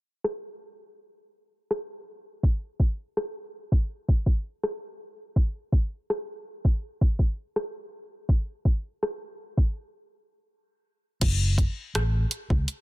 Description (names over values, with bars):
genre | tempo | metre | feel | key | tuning
contemporary R&B | 82 BPM | 4/4 | straight | F# minor | A4 = 440 Hz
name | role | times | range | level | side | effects
smooth R&B drum kit | drums | 0.2-12.8 s | crash cymbal, hi-hat, kick drum, rim click | -24 LUFS | equal | none
vintage muted fingered electric bass | bass | 11.2-12.6 s | F#1 to C#2 | -24 LUFS | equal | none
room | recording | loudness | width
little or no reverb | dense, heavily limited modern master, low-pass filter | -25 LUFS | side -19 dB against mid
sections
0.0-11.2 A section; 11.2-12.8 B section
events
break 9.8-11.2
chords
none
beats
0.24 0.97 1.70 | 2.44 3.17 3.90 4.63 | 5.36 6.09 6.83 7.56 | 8.29 9.02 9.75 10.48 | 11.21 11.95 12.68